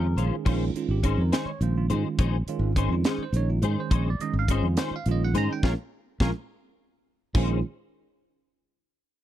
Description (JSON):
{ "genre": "electric jazz fusion", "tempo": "70 BPM (dotted quarters)", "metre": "6/8", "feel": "straight", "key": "Bb minor", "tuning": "A4 = 437 Hz", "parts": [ { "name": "barky tine electric piano", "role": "accompaniment", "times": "0.0-7.6 s", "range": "Eb3 to Bb5", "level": "-30 LUFS", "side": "right 7 dB", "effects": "phaser" }, { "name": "clean electric guitar", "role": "stabs", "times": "0.0-7.6 s", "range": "Db4 to C5", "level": "-32 LUFS", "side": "left 11 dB", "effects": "ensemble chorus" }, { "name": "fingered electric bass", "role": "bass", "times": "0.0-7.6 s", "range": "Ab1 to Ab2", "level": "-25 LUFS", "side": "equal", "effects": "none" }, { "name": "tight funk drum kit", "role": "drums", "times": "0.2-7.5 s", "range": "crash cymbal, hi-hat, kick drum, snare drum", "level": "-25 LUFS", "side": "equal", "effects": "none" } ], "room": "small room ambience", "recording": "dry, close 1970s-style studio recording", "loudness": "-23 LUFS", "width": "side -12 dB against mid", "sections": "0.5-7.3 A section; 7.3-9.1 B section", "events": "band accent 5.6-7.3; drum fill 6.5-7.3", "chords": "0.5 Bbm11" }